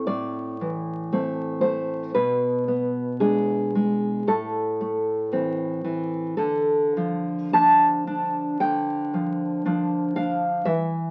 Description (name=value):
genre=romantic piece for solo classical guitar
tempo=57 BPM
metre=4/4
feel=rubato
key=unclear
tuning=A4 = 440 Hz
part: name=nylon-string guitar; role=solo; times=0.0-11.1 s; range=A2 to A5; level=-24 LUFS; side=equal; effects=none
room=moderate studio reverb, RT60 0.7 s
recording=very old 78 rpm record, vinyl crackle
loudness=-24 LUFS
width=mono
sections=0.0-11.1 A section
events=none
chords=0.0 Am; 2.2 G#dim/B; 4.3 Am; 6.4 Dm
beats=0.09 1.12 | 2.16 3.21 4.26 5.32 | 6.37 7.53 8.61 9.64 | 10.66